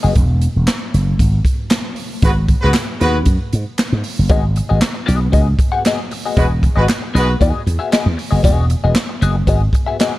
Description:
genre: funk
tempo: 116 BPM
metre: 4/4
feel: straight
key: unclear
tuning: A4 = 440 Hz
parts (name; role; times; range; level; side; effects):
- clean electric guitar; accompaniment; 0.0-0.1, 4.3-10.1 s; B3 to F#5; -21 LUFS; left 6 dB; wah
- slap bass with an envelope filter; bass; 0.0-9.7 s; E1 to G#2; -15 LUFS; equal; none
- swinging big-band drum kit; drums; 0.2-10.1 s; handclaps, hi-hat, kick drum, snare drum; -17 LUFS; equal; none
- warm horn section; second line; 2.2-3.2, 6.4-7.3 s; G#3 to B4; -20 LUFS; equal; none
room: small room ambience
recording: dark, warm production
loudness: -13 LUFS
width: side -17 dB against mid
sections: 0.0-10.2 A section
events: none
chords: 0.0 Eadd9; 2.2 G#m7; 6.4 Emaj9

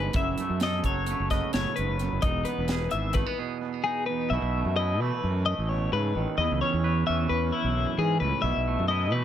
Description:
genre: math rock and midwest emo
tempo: 260 BPM (eighths)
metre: 9/8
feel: straight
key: E major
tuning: A4 = 438 Hz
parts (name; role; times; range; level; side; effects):
- twangy electric guitar; accompaniment; 0.0-9.2 s; E2 to B4; -31 LUFS; right 10 dB; tape echo
- twelve-string electric guitar; arpeggios; 0.0-9.2 s; E4 to E5; -29 LUFS; left 7 dB; tremolo
- fuzz fingered electric bass; bass; 0.0-9.2 s; E1 to E3; -28 LUFS; equal; overdrive
- crisp fusion drum kit; drums; 0.1-3.3 s; hi-hat, kick drum, snare drum; -30 LUFS; equal; tape echo
room: light reverb, small room ambience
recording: echo-heavy mix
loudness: -24 LUFS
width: side -10 dB against mid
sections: 0.0-4.3 A section; 4.3-9.2 B section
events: break 3.3-4.3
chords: 0.1 F#m7; 2.2 Emaj7; 4.3 B7sus4; 6.4 E6; 8.5 B7sus4

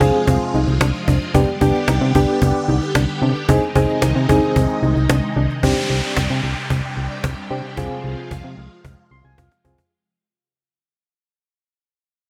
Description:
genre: synth-pop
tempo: 112 BPM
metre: 4/4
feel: straight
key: C harmonic minor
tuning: A4 = 442 Hz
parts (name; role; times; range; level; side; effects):
- soft electric-piano-like synth keys; accompaniment; 0.0-9.9 s; B3 to C6; -22 LUFS; equal; chorus, tremolo
- phased string machine; sustained chords; 0.0-9.9 s; C3 to G4; -28 LUFS; equal; ensemble chorus, phaser
- soft round pluck; arpeggios; 0.0-5.5 s; B3 to Eb4; -28 LUFS; equal; chorus, analog delay
- solid FM bass; bass; 0.0-9.8 s; C2 to C3; -21 LUFS; equal; none
- cajon; drums; 0.0-9.9 s; none; -24 LUFS; equal; none
- downlifter; sound effects; 5.6-9.9 s; none; -29 LUFS; equal; none
room: light reverb, digital ambience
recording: none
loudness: -18 LUFS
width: mono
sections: 0.0-5.6 A section; 5.6-9.9 B section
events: fade-out 5.6-9.9; synth keys fill 8.8-9.9; drum fill 9.4-9.9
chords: 0.0 Fm/C; 1.3 G/C; 3.5 Ab/C; 5.6 Csus2; 7.8 Fm/C

